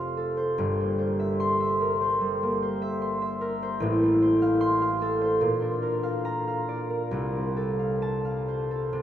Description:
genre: classical, solo harp piece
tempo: 66-76 BPM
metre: 4/4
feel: rubato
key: F major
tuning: A4 = 440 Hz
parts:
  - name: concert harp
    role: solo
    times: 0.0-9.0 s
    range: F1 to C6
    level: -24 LUFS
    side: equal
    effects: none
room: wet huge ambient reverb, RT60 7.7 s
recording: in a vast, echoing space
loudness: -24 LUFS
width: side -10 dB against mid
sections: 0.0-9.0 A section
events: none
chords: 0.0 F; 0.6 C7/G; 3.8 F/A; 5.4 Bb; 7.1 F/C

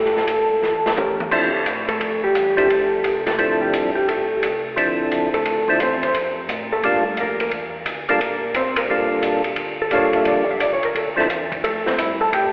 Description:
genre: soul jazz organ trio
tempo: 174 BPM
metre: 4/4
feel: swing 65% on 8ths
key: D minor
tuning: A4 = 440 Hz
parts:
  - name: percussive tonewheel organ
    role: melody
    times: 0.0-11.3 s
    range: F3 to A4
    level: -23 LUFS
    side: equal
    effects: slow rotary speaker, chorus vibrato
  - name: mellow tonewheel organ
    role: bass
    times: 0.0-12.5 s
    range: G1 to A2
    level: -44 LUFS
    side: equal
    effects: chorus vibrato, slow rotary speaker
  - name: vintage drum kit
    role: drums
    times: 0.1-12.4 s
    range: crash cymbal, hi-hat, kick drum, ride cymbal, snare drum, toms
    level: -28 LUFS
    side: equal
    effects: none
  - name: vintage hollow-body jazz guitar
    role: accompaniment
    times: 1.0-12.5 s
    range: G3 to A5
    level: -24 LUFS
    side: equal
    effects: none
room: wet church reverb, RT60 2.7 s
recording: recorded in a church or concert hall, telephone sound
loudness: -20 LUFS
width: mono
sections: 0.0-1.3 A section; 1.3-12.5 B section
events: drum fill 0.6-1.3; hollow-body jazz guitar solo 1.3-12.5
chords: 0.0 A7b9; 1.3 Dm7; 6.8 Gm7; 11.0 Dm7

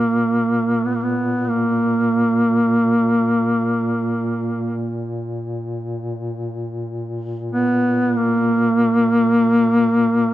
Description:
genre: caucasian folk, Caucasian lament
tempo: free time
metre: none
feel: none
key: unclear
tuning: A4 = 439 Hz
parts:
  - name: mellow duduk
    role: melody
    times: 0.0-10.3 s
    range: Bb3 to Cb4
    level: -16 LUFS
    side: equal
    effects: none
  - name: dark duduk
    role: drone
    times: 0.0-10.3 s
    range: Bb2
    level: -26 LUFS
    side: left 1 dB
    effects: none
room: light reverb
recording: dark, warm production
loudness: -17 LUFS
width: side -14 dB against mid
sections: 0.0-10.3 A section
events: none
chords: none

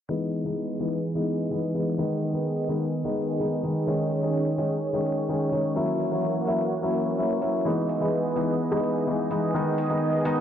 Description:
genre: EDM, festival progressive house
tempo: 127 BPM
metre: 4/4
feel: straight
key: unclear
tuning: A4 = 440 Hz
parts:
  - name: warm baby grand piano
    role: accompaniment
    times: 0.1-10.4 s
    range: D#3 to E4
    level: -25 LUFS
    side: left 2 dB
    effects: dub echo
  - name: lush unison pad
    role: sustained chords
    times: 0.1-10.4 s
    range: D#3 to D#5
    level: -29 LUFS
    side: right 3 dB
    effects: chorus
  - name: big-room dance drum kit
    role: drums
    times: 0.3-10.3 s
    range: hi-hat, rim click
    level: -34 LUFS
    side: left 2 dB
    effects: studio ambience
room: moderate lush hall reverb, RT60 1.8 s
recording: low-pass filter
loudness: -24 LUFS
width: side -9 dB against mid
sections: 0.1-10.4 A section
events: filter sweep on analog synth pad 0.1-10.4; filter sweep 0.1-10.4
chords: 0.1 Emaj7; 2.0 G#m; 3.9 C#sus2; 5.8 F#7; 7.7 Emaj7; 9.5 G#m

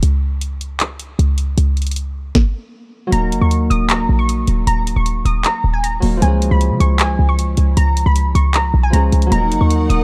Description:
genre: hip hop, trap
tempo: 155 BPM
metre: 4/4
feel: half-time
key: Eb minor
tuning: A4 = 436 Hz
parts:
  - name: short 808-style bass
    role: bass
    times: 0.0-10.0 s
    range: Eb1 to Db3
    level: -17 LUFS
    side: equal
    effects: none
  - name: trap drum kit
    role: drums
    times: 0.0-10.0 s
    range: handclaps, hi-hat, kick drum, snare drum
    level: -21 LUFS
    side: equal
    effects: none
  - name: glassy wavetable pluck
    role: melody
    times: 3.1-10.0 s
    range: Ab5 to Eb6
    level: -24 LUFS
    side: equal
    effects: chorus, low-pass filter, digital delay
  - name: Celtic harp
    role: accompaniment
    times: 3.1-10.0 s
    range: F3 to Bb4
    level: -23 LUFS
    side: equal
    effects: low-pass filter
  - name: warm symphonic string section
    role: sustained chords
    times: 9.3-10.0 s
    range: Eb4 to Gb5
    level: -24 LUFS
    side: equal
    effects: none
room: little or no reverb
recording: dark, warm production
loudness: -16 LUFS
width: mono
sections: 0.0-3.1 A section; 3.1-10.0 B section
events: break 0.0-3.1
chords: 0.0 N.C.; 3.1 Ebm; 6.2 Db; 9.3 Ebm

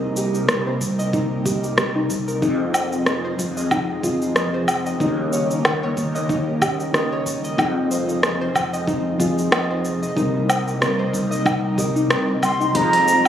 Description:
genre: sunset chillout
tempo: 93 BPM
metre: 4/4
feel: swing 56% on 16ths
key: F minor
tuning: A4 = 439 Hz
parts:
  - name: mellow FM electric piano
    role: accompaniment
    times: 0.0-13.3 s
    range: C3 to Eb5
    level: -28 LUFS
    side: equal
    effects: chorus, tremolo, auto-pan, ping-pong delay
  - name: airy breathy pad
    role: sustained chords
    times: 0.0-13.3 s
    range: C3 to Eb4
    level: -29 LUFS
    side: right 1 dB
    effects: chorus, phaser
  - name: fretless electric bass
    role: bass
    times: 0.0-13.3 s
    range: C2 to F2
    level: -25 LUFS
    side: equal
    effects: ensemble chorus
  - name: soft round pluck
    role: arpeggios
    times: 0.2-13.2 s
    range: Eb4 to G5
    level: -25 LUFS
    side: left 1 dB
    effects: chorus, ping-pong delay
  - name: deep house drum kit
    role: drums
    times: 0.2-13.3 s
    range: cabasa, hi-hat, rim click, woodblock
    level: -22 LUFS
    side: equal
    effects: none
  - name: electronic kick drum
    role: drums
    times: 0.8-12.9 s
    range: none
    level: -28 LUFS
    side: equal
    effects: none
  - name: breathy mellow concert flute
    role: melody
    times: 12.4-13.3 s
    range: Bb5 to C6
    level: -16 LUFS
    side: right 2 dB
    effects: none
room: moderate concert hall reverb, RT60 2.1 s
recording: recorded on a phone in the room, studio reverb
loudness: -18 LUFS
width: side -10 dB against mid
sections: 0.0-12.7 A section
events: none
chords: 0.0 Cm7; 2.4 Fm7; 5.0 Eb7; 7.6 Fm7; 10.2 Cm7; 12.7 Fm7

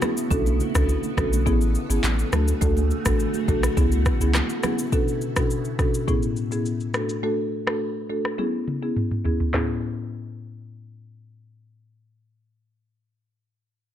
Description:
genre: afrobeats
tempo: 104 BPM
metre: 4/4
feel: straight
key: A major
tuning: A4 = 440 Hz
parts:
  - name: marimba with soft mallets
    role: accompaniment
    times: 0.0-13.3 s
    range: A2 to A4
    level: -26 LUFS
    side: left 1 dB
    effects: none
  - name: granular cloud pad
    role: sustained chords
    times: 0.0-4.9 s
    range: D3 to F#4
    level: -32 LUFS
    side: equal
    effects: built-in reverb, phaser
  - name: afro-pop drum kit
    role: drums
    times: 0.0-9.7 s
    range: handclaps, kick drum, rim click, shaker, snare drum, toms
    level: -25 LUFS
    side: equal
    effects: none
  - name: congas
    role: percussion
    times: 0.0-4.8 s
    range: none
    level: -33 LUFS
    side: right 10 dB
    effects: none
  - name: punchy sub bass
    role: bass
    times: 0.3-4.4 s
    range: G#1 to D2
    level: -23 LUFS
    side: equal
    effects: none
room: little or no reverb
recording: low-pass filter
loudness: -21 LUFS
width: side -10 dB against mid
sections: 0.0-4.9 A section; 4.9-9.5 B section; 9.5-11.8 C section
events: filter sweep 4.9-9.5; drum fill 8.4-9.5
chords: 0.3 Bm7; 1.5 Amaj7; 2.3 D; 3.8 C#m7; 4.9 Bm7; 6.1 Amaj7; 6.9 D; 8.4 C#m7; 9.5 Amaj7

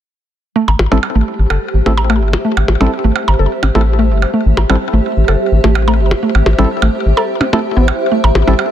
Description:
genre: minimal techno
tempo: 127 BPM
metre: 4/4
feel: straight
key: A minor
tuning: A4 = 440 Hz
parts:
  - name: mallet-like synth pluck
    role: riff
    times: 0.6-8.5 s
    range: G3 to A4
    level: -18 LUFS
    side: equal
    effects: chorus, dub echo
  - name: granular cloud pad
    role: texture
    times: 1.2-8.7 s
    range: G4 to E5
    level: -19 LUFS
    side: right 1 dB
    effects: built-in reverb
  - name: rubbery square bass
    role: bass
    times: 0.7-8.5 s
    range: G1 to A1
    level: -12 LUFS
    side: equal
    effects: none
  - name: percussion blips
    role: percussion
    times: 0.7-8.7 s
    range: none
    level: -18 LUFS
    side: right 2 dB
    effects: ping-pong delay
  - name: percussive organ stab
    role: stabs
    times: 0.9-8.5 s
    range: C4 to A4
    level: -21 LUFS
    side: right 1 dB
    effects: chorus, cassette tape, ping-pong delay
room: light reverb, digital ambience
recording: dense, heavily limited modern master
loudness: -11 LUFS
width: side -10 dB against mid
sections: 0.6-8.7 A section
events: none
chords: 0.6 Am

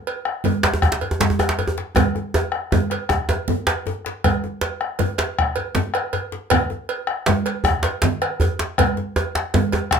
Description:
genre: west african traditional, West African drum ensemble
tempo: 106 BPM (dotted quarters)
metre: 12/8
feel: straight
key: none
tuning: none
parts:
  - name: cowbell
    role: percussion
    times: 0.1-9.9 s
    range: none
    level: -26 LUFS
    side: right 5 dB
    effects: none
  - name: bombo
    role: percussion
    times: 0.3-10.0 s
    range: none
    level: -22 LUFS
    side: left 3 dB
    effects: none
  - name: djembe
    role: percussion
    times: 0.3-9.9 s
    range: none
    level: -24 LUFS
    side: left 4 dB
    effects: none
  - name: congas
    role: percussion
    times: 0.4-9.7 s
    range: none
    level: -24 LUFS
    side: right 7 dB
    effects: none
  - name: djembe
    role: percussion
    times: 0.6-10.0 s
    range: none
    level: -21 LUFS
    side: right 1 dB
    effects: none
room: moderate small room reverb, RT60 0.6 s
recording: minimal, uncompressed stereo recording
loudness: -19 LUFS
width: side -6 dB against mid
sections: 0.0-4.2 A section; 4.2-10.0 B section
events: drum fill 2.0-4.2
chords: none

